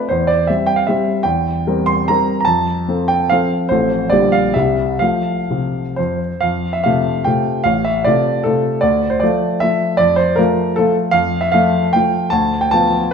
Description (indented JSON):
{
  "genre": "classical, romantic triple-time dance for piano with dotted rhythms",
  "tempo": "116-164 BPM",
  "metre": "3/4",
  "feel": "rubato",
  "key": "F major",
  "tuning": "A4 = 440 Hz",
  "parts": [
    { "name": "warm grand piano", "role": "solo", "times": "0.0-13.1 s", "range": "A1 to C6", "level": "-14 LUFS", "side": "equal", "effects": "none" }
  ],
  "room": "wet recital hall reverb, RT60 1.6 s",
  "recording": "minimal, uncompressed stereo recording",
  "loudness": "-14 LUFS",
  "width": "side -6 dB against mid",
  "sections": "0.0-6.4 A section; 6.4-13.1 B section",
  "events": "none",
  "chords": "0.1 C/E; 1.2 C7/E; 2.5 F; 3.7 F/A; 4.1 Gm/Bb; 4.5 C; 5.0 F; 7.7 F/A; 8.8 Dm; 10.0 F; 12.3 Bdim/D"
}